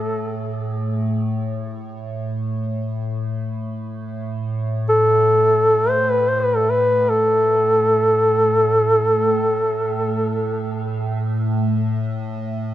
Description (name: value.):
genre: caucasian folk, Caucasian lament.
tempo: free time.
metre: none.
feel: none.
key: unclear.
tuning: A4 = 440 Hz.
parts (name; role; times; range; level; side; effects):
mellow duduk; melody; 0.0-10.7 s; A4 to C5; -17 LUFS; equal; tape echo.
evolving wavetable pad; drone; 0.0-12.7 s; A2; -23 LUFS; equal; chorus, built-in reverb, phaser.
room: moderate recital hall reverb, RT60 1.7 s.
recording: close, detailed microphones.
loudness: -17 LUFS.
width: side -13 dB against mid.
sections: 0.0-4.0 A section; 4.0-12.7 A section.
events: none.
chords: none.